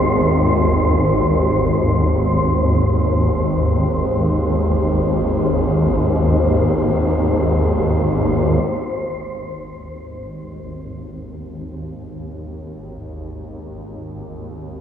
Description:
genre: dark ambient drone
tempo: free time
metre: none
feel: none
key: Ab major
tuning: A4 = 440 Hz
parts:
  - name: swarming drone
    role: drone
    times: 0.0-14.8 s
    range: Ab1 to Eb2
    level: -17 LUFS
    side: equal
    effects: built-in reverb
  - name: wind-like tuned noise texture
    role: texture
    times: 0.0-8.7 s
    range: C5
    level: -24 LUFS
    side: equal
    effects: built-in reverb
room: wet lush hall reverb, RT60 2.7 s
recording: dreamy mix soaked in reverb, small room reverb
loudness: -15 LUFS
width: side -9 dB against mid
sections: 0.0-8.6 A section; 8.6-14.8 B section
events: none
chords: 0.0 Ab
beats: free time

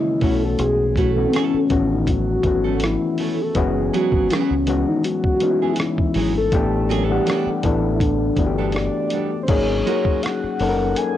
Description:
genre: R&B, neo-soul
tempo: 81 BPM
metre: 4/4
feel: swing 54% on 16ths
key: G# phrygian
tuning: A4 = 440 Hz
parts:
  - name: soft octave-layered synth lead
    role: melody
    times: 0.0-11.2 s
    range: B#3 to G#5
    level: -22 LUFS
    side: equal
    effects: chorus, phaser, cassette tape
  - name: overdriven reed electric piano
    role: accompaniment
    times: 0.0-11.2 s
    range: C#3 to F#5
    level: -22 LUFS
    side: left 5 dB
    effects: cassette tape, plate reverb
  - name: nylon-string guitar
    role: second line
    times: 0.2-10.2 s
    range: F#3 to A#4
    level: -26 LUFS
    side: right 9 dB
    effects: cassette tape
  - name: deep dub fingered electric bass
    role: bass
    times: 0.2-10.9 s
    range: F#1 to C#2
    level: -24 LUFS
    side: equal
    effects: none
  - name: dusty soul sampler-style drum kit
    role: drums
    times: 0.2-11.2 s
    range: crash cymbal, hi-hat, kick drum, rim click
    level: -24 LUFS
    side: equal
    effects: cassette tape
room: light reverb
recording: home recording on cassette, lossy compression artefacts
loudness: -17 LUFS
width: side -12 dB against mid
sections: 0.0-9.5 A section; 9.5-11.2 B section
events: none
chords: 0.2 B9sus4; 3.6 F#9sus4; 6.5 A9sus4; 9.5 G#9sus4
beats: | 0.59 1.33 2.07 2.81 | 3.55 4.29 5.04 5.78 | 6.52 7.26 8.00 8.74 | 9.48 10.22 10.96

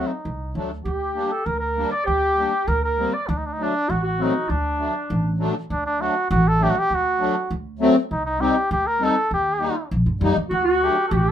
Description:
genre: klezmer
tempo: 100 BPM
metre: 2/4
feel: straight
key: D phrygian dominant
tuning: A4 = 440 Hz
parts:
  - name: cornet with cup mute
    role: melody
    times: 0.0-11.3 s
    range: D4 to D5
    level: -22 LUFS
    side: equal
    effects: none
  - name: musette accordion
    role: accompaniment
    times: 0.0-11.0 s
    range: F#3 to Eb4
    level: -22 LUFS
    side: left 2 dB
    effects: none
  - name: upright bass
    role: bass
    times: 0.3-11.3 s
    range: A1 to G2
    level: -24 LUFS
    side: equal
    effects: none
  - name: warm clarinet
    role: second line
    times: 0.8-5.4, 10.5-11.3 s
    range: D4 to D5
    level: -25 LUFS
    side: right 1 dB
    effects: none
room: moderate studio reverb, RT60 0.5 s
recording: minimal, uncompressed stereo recording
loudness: -19 LUFS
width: side -10 dB against mid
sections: 0.0-5.7 A section; 5.7-11.3 B section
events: none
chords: 0.0 D; 0.9 Gm/D; 3.3 D; 8.1 Cm; 9.3 Eb; 10.5 D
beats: 0.26 | 0.87 1.47 | 2.08 2.68 | 3.29 3.89 | 4.50 5.10 | 5.70 6.30 | 6.91 7.51 | 8.11 8.71 | 9.31 9.91 | 10.51 11.11

